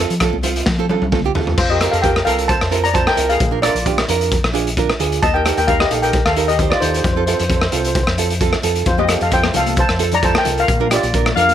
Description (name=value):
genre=calypso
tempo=132 BPM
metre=4/4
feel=swing 53% on 16ths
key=unclear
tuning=A4 = 440 Hz
part: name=nylon-string guitar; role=accompaniment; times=0.0-11.5 s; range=C4 to C5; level=-21 LUFS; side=right 10 dB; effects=none
part: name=fingered electric bass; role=bass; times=0.0-11.5 s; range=Bb1 to F3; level=-22 LUFS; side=left 1 dB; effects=none
part: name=raw garage drum kit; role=drums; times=0.1-11.5 s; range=crash cymbal, hi-hat, kick drum, rim click, snare drum, toms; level=-18 LUFS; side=left 1 dB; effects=none
part: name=congas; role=percussion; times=0.3-1.5, 9.0-11.5 s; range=none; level=-29 LUFS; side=left 14 dB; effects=none
part: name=steel pan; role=melody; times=1.6-11.3 s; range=Eb4 to Bb5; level=-18 LUFS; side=left 2 dB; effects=tape echo
part: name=mellow horn section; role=second line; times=11.4-11.5 s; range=F5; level=-12 LUFS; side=left 3 dB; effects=none
room=moderate small room ambience, RT60 0.5 s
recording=none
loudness=-14 LUFS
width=side -10 dB against mid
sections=0.0-1.6 A section; 1.6-11.5 B section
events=drum fill 0.7-1.6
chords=0.0 F; 1.6 Fsus4; 3.4 Bb7; 5.2 Eb; 7.0 F; 10.7 Bb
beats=0.21 0.67 1.12 | 1.58 2.04 2.49 2.95 | 3.40 3.86 4.32 4.77 | 5.23 5.68 6.14 6.59 | 7.05 7.50 7.96 8.41 | 8.87 9.32 9.78 10.23 | 10.68 11.14